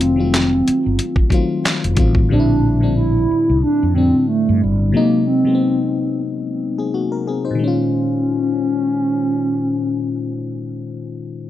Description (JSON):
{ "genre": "R&B, neo-soul", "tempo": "91 BPM", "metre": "4/4", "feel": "swing 55% on 16ths", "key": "unclear", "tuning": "A4 = 440 Hz", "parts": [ { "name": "hollow clarinet-like synth lead", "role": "melody", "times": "0.0-10.8 s", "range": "G3 to E4", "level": "-18 LUFS", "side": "right 1 dB", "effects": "chorus" }, { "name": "FM electric piano", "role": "accompaniment", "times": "0.0-11.5 s", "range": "A2 to B#4", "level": "-20 LUFS", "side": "left 4 dB", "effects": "chorus" }, { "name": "mellow fretless electric bass", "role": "bass", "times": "0.0-4.9 s", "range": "F1 to G2", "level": "-18 LUFS", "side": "equal", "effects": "wide subtle chorus" }, { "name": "boom bap sampler-style drum kit", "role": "drums", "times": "0.0-2.3 s", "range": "handclaps, hi-hat, kick drum, snare drum", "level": "-16 LUFS", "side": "equal", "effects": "none" } ], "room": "moderate small room reverb, RT60 0.6 s", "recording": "none", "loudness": "-15 LUFS", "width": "side -12 dB against mid", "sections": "0.0-7.6 A section; 7.6-10.2 B section", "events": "none", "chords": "0.0 F7b9; 2.3 A#69; 4.9 G#7; 7.6 C#69", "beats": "0.32 0.98 1.64 | 2.30 2.96 3.62 4.28 | 4.93 5.59 6.25 6.91 | 7.57 8.23 8.89 9.55" }